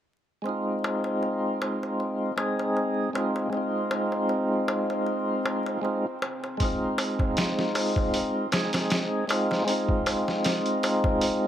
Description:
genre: trip hop.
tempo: 78 BPM.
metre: 4/4.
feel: swing 54% on 16ths.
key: F minor.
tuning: A4 = 440 Hz.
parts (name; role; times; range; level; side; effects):
percussive tonewheel organ; accompaniment; 0.4-11.5 s; Ab3 to Ab4; -26 LUFS; equal; slow rotary speaker, tremolo, tape echo.
bowed-like drone; texture; 1.8-11.5 s; C4; -38 LUFS; left 2 dB; none.
darbuka; percussion; 0.5-11.4 s; none; -33 LUFS; left 1 dB; none.
trip hop sampler-style drum kit; drums; 6.6-11.4 s; hi-hat, kick drum, snare drum; -28 LUFS; equal; studio reverb.
room: moderate spring reverb, RT60 2.4 s.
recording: vinyl crackle.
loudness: -24 LUFS.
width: side -10 dB against mid.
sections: 0.4-11.5 A section.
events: none.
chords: 0.4 Fm7.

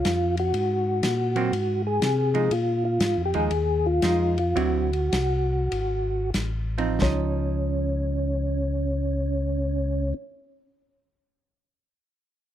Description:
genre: soul jazz organ trio.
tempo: 85-122 BPM.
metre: 4/4.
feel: swing 66% on 8ths.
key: Db major.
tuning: A4 = 440 Hz.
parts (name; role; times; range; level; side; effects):
percussive tonewheel organ; melody; 0.0-10.1 s; Db4 to Ab4; -25 LUFS; equal; slow rotary speaker, chorus vibrato, plate reverb.
mellow tonewheel organ; bass; 0.0-10.1 s; Ab1 to C3; -26 LUFS; left 1 dB; overdrive, chorus vibrato, slow rotary speaker.
warm soul drum kit; drums; 0.0-7.2 s; hi-hat, kick drum, ride cymbal, snare drum; -29 LUFS; left 1 dB; none.
hollow-body jazz guitar; accompaniment; 1.4-10.2 s; D3 to E4; -29 LUFS; right 7 dB; none.
room: light reverb.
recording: none.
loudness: -22 LUFS.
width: side -11 dB against mid.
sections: 0.0-7.0 A section; 7.0-12.5 B section.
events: slowing down 2.5-7.0.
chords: 0.0 Gbmaj7(no3); 0.5 Ab9; 2.5 Bb7sus4; 4.6 D9; 7.0 Dbadd9.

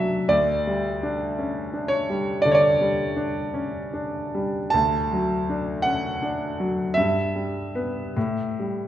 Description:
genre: classical, romantic nocturne for solo piano.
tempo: 44-58 BPM.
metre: 4/4.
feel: rubato.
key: unclear.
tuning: A4 = 441 Hz.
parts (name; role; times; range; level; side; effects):
clear grand piano; solo; 0.0-8.9 s; D2 to A5; -22 LUFS; equal; none.
room: wet recital hall reverb, RT60 1.7 s.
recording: recorded in a church or concert hall.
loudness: -22 LUFS.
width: side -11 dB against mid.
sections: 0.0-8.9 A section.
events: none.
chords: 0.3 G5/D; 4.7 D; 7.0 Em/G; 8.2 A7(no3).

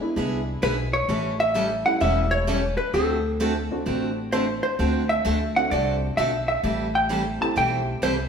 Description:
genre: country, western swing.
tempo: 130 BPM.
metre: 4/4.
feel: swing 67% on 8ths.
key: unclear.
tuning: A4 = 440 Hz.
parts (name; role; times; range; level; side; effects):
honky-tonk upright piano; accompaniment; 0.0-8.0 s; G3 to G4; -31 LUFS; equal; none.
picked steel-string acoustic guitar; accompaniment; 0.2-8.1 s; D3 to A4; -27 LUFS; right 1 dB; none.
upright bass; bass; 0.2-8.3 s; E1 to D2; -27 LUFS; equal; none.
vintage hollow-body jazz guitar; melody; 0.6-8.1 s; A4 to A5; -23 LUFS; equal; none.
room: wet stone room reverb, RT60 1.2 s.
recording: band playing live in one room.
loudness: -21 LUFS.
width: side -6 dB against mid.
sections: 0.0-8.3 A section.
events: none.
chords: 0.0 E7; 1.1 A7; 2.9 D7; 6.6 Am7.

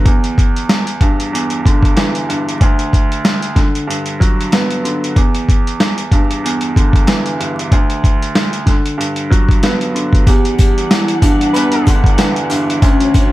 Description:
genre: hip hop, boom-bap hip-hop.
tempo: 94 BPM.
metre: 4/4.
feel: swing 56% on 16ths.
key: E dorian.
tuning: A4 = 441 Hz.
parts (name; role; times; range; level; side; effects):
bright upright piano; accompaniment; 0.0-13.3 s; D2 to B3; -18 LUFS; right 1 dB; cassette tape, high-pass filter, low-pass filter.
lo-fi sampler-style drum kit; drums; 0.1-13.3 s; hi-hat, kick drum, snare drum; -13 LUFS; equal; none.
vibraphone with soft mallets; melody; 10.3-13.3 s; C#4 to G4; -17 LUFS; left 1 dB; high-pass filter, low-pass filter, ping-pong delay.
warm studio string section; sustained chords; 10.3-13.3 s; D2 to F#5; -23 LUFS; left 2 dB; high-pass filter, low-pass filter.
sleigh bells; percussion; 10.3-13.3 s; none; -32 LUFS; left 5 dB; none.
warm horn section; stabs; 11.5-12.0 s; G3 to B4; -22 LUFS; left 1 dB; high-pass filter, low-pass filter, ping-pong delay.
room: small room ambience.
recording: vinyl crackle.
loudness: -11 LUFS.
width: side -16 dB against mid.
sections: 0.0-10.3 A section; 10.3-13.3 B section.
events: none.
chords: 0.1 Em7; 2.6 N.C.; 3.6 Gmaj7; 5.2 Em7; 7.7 N.C.; 8.7 Gmaj7; 10.3 Em7; 12.8 Dmaj7.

